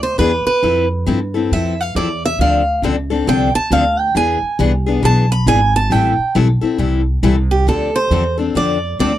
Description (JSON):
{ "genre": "acoustic string swing (jazz manouche)", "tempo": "136 BPM", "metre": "4/4", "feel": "swing 62% on 8ths", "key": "A minor", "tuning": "A4 = 439 Hz", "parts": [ { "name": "picked steel-string acoustic guitar", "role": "melody", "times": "0.0-9.2 s", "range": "G4 to B5", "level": "-17 LUFS", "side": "right 3 dB", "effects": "none" }, { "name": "upright bass", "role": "bass", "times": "0.0-9.2 s", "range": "G#1 to G2", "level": "-18 LUFS", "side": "right 1 dB", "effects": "none" }, { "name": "picked steel-string acoustic guitar", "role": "accompaniment", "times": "0.2-9.1 s", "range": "D3 to A4", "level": "-18 LUFS", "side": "left 6 dB", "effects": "none" } ], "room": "light reverb", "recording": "dry, close 1970s-style studio recording", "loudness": "-13 LUFS", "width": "side -12 dB against mid", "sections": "0.0-7.7 A section; 7.7-9.2 B section", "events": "steel-string acoustic guitar solo 0.0-7.7", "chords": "0.0 E7; 0.6 Fmaj7; 2.4 Dm7; 4.2 E7; 5.9 Am7; 7.7 Dm7" }